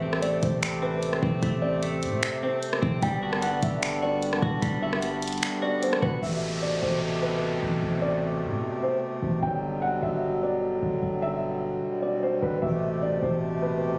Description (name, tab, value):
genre	hip hop, atmospheric cloud-rap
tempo	150 BPM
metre	4/4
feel	half-time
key	A dorian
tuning	A4 = 438 Hz
part	felt-muted upright piano	melody	0.0-14.0 s	B4 to G5	-33 LUFS	equal	low-pass filter, digital delay
part	hand-pumped harmonium	sustained chords	0.0-14.0 s	B2 to G4	-31 LUFS	equal	sidechain pumping
part	semi-hollow electric guitar	arpeggios	0.0-6.2 s	G3 to F#4	-36 LUFS	equal	low-pass filter, digital delay
part	warm 808-style bass	bass	0.0-14.0 s	G1 to A2	-33 LUFS	equal	none
part	smooth R&B drum kit	drums	0.1-6.1 s	finger snaps, hi-hat, kick drum, rim click	-31 LUFS	equal	none
part	downlifter	sound effects	6.2-9.4 s	none	-39 LUFS	equal	none
room	little or no reverb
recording	recorded on a phone in the room, studio reverb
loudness	-27 LUFS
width	mono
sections	0.0-6.2 A section; 6.2-14.0 B section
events	none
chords	0.0 Am7; 3.0 Gmaj7; 6.2 Am9; 9.4 Gmaj7; 12.6 Am9